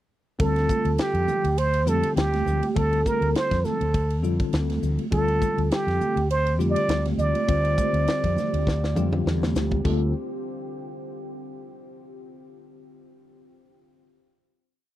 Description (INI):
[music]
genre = electric jazz fusion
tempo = 102 BPM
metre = 4/4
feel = swing 55% on 16ths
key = D minor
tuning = A4 = 440 Hz
[part]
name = trumpet with plunger mute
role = melody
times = 0.4-9.2 s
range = G4 to D5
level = -25 LUFS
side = right 3 dB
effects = none
[part]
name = bell-like tine electric piano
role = accompaniment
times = 0.4-10.1 s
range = D3 to C5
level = -29 LUFS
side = left 5 dB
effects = fast stereo tremolo, phaser
[part]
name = fretless electric bass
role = bass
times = 0.4-10.1 s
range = D2 to F2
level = -25 LUFS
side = equal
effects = none
[part]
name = crisp fusion drum kit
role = drums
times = 0.4-10.0 s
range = china cymbal, hi-hat, kick drum, ride cymbal, snare drum, toms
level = -28 LUFS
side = equal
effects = none
[part]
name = congas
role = percussion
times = 0.7-10.1 s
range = none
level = -32 LUFS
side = right 5 dB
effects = none
[part]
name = deep dark ambient pad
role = sustained chords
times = 6.3-10.1 s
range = D3 to G4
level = -37 LUFS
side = left 1 dB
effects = chorus, built-in reverb
[sound]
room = little or no reverb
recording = dry, close 1970s-style studio recording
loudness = -21 LUFS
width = side -14 dB against mid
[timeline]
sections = 0.4-9.8 groove; 9.8-12.2 final chord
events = drum fill 8.7-9.8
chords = 0.4 Dm11